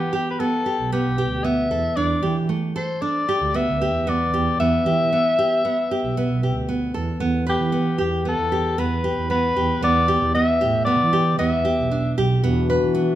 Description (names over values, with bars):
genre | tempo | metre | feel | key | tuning
contemporary instrumental, chamber music in an uneven meter | 115 BPM | 5/4 | straight | E minor | A4 = 440 Hz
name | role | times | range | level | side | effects
warm soprano saxophone | melody | 0.0-12.1 s | G4 to E5 | -22 LUFS | left 2 dB | none
nylon-string guitar | arpeggios | 0.0-13.2 s | A3 to B4 | -23 LUFS | right 1 dB | none
dark double bass | bass | 0.8-13.0 s | B1 to E3 | -24 LUFS | right 3 dB | none
mellow French horn | second line | 12.4-13.2 s | F#4 | -23 LUFS | left 8 dB | none
warm woodwind section | sustained chords | 12.4-13.2 s | E3 to D4 | -29 LUFS | left 2 dB | none
room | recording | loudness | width
moderate recital hall reverb, RT60 1.5 s | minimal, uncompressed stereo recording | -18 LUFS | side -13 dB against mid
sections
0.0-7.2 A section; 7.2-13.2 B section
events
none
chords
0.0 Em7; 2.0 Gsus2/E; 4.6 Em7; 7.2 Em; 12.4 Bm/E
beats
0.39 0.92 1.45 | 1.97 2.50 3.02 3.54 4.07 | 4.59 5.12 5.64 6.16 6.69 | 7.21 7.73 8.26 8.78 9.30 | 9.82 10.35 10.87 11.39 11.91 | 12.44 12.96